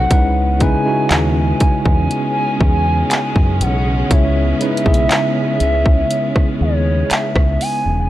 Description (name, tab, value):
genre	contemporary R&B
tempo	60 BPM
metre	4/4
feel	straight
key	C# minor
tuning	A4 = 440 Hz
part	gliding portamento lead	melody	0.0-8.1 s	C#5 to G#5	-20 LUFS	equal	chorus, analog delay
part	tine electric piano	accompaniment	0.0-8.1 s	C3 to C#5	-20 LUFS	equal	fast stereo tremolo
part	warm studio string section	sustained chords	0.0-8.1 s	C#3 to C#4	-24 LUFS	equal	stereo widening, sidechain pumping
part	deep dub fingered electric bass	bass	0.0-8.1 s	E1 to F#2	-17 LUFS	equal	none
part	trap drum kit	drums	0.1-7.8 s	handclaps, hi-hat, kick drum, rim click	-16 LUFS	equal	none
room	little or no reverb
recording	dry, gritty hardware recording, cassette tape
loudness	-13 LUFS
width	side -14 dB against mid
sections	0.0-8.1 A section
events	none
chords	0.1 C#m7